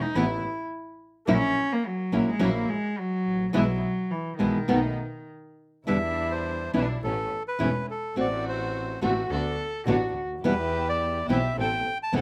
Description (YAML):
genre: tango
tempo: 106 BPM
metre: 4/4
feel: rubato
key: E minor from 5.9 s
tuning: A4 = 440 Hz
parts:
  - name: warm cello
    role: second line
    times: 0.0-5.2, 9.0-10.2 s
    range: D#3 to A4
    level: -31 LUFS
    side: equal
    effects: none
  - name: nylon-string guitar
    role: accompaniment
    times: 0.0-12.2 s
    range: B2 to F#4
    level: -27 LUFS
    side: equal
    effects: none
  - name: rich chamber string section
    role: stabs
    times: 0.0-12.2 s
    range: F#3 to A4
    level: -36 LUFS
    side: equal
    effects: slapback echo
  - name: rich double bass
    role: bass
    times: 0.0-12.2 s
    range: E1 to E2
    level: -34 LUFS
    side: equal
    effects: none
  - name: bandoneon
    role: melody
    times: 5.9-12.2 s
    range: A4 to A5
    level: -31 LUFS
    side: equal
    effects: none
room: light reverb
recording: recorded outdoors, with no room sound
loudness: -27 LUFS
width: mono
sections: 0.0-5.9 A section; 5.9-12.2 B section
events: cello solo 0.0-5.9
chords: 0.0 Asus2; 1.3 F#7/A#; 3.5 E/B; 4.7 B7; 5.9 Em7; 7.0 Aadd9; 8.2 F#dim/A; 9.3 D6; 10.4 Em; 11.6 Amadd9